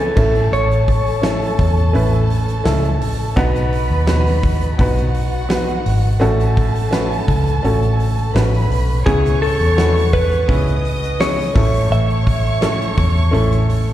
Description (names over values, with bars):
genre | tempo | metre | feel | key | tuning
piano-driven pop | 84 BPM | 4/4 | straight | unclear | A4 = 440 Hz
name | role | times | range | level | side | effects
direct-recorded clean electric guitar | melody | 0.0-1.9, 9.1-13.3 s | G#4 to E5 | -20 LUFS | left 1 dB | wide subtle chorus, plate reverb, slapback echo, tape echo
warm studio violin section | second line | 0.0-13.9 s | F#4 to D#6 | -26 LUFS | right 1 dB | plate reverb, slapback echo
bright upright piano | accompaniment | 0.0-13.9 s | A2 to G#5 | -22 LUFS | right 1 dB | plate reverb, slapback echo
vintage muted fingered electric bass | bass | 0.0-13.9 s | G#1 to E2 | -17 LUFS | equal | none
huge arena drum kit | drums | 0.2-13.9 s | crash cymbal, hi-hat, kick drum, snare drum | -21 LUFS | equal | none
room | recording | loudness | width
light reverb | live gig heard through the venue's PA, recital hall reverb | -14 LUFS | side -13 dB against mid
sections
0.0-13.9 A section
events
none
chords
0.2 A; 3.4 B; 6.2 F#m/A; 9.1 C#m7; 11.6 A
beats
| 0.52 1.24 1.95 2.66 | 3.37 4.08 4.79 5.51 | 6.22 6.93 7.64 8.35 | 9.06 9.78 10.49 11.20 | 11.91 12.62 13.33